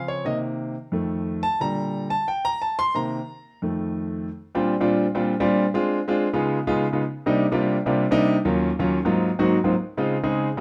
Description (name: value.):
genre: jazz.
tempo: 177 BPM.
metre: 4/4.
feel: straight.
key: Bb major.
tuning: A4 = 440 Hz.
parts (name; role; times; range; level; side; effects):
clear concert grand piano; solo; 0.0-10.6 s; Eb2 to C6; -23 LUFS; equal; none.
room: moderate studio reverb, RT60 0.8 s.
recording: none.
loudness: -23 LUFS.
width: mono.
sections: 0.0-4.3 A section; 4.3-10.6 B section.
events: grand piano solo 0.0-4.3.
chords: 0.3 Cm7; 0.9 F7; 1.6 Bb6; 3.0 Cm7; 3.6 F7; 4.3 Bb69; 5.7 Dm7b5; 6.3 Db9; 7.0 Cm7; 8.4 Ebm9; 9.0 Ab13; 9.7 Dbmaj9.